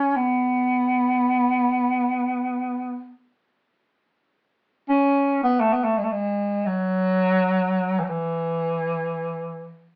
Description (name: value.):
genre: Arabic maqam ensemble.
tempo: free time.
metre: none.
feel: none.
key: unclear.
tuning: A4 = 445 Hz.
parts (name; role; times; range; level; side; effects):
mellow bass clarinet; solo; 0.0-9.9 s; E3 to C#4; -23 LUFS; equal; none.
room: wet studio reverb, RT60 0.6 s.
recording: band playing live in one room, AM radio sound.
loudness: -23 LUFS.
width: mono.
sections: 0.0-10.0 A section.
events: none.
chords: none.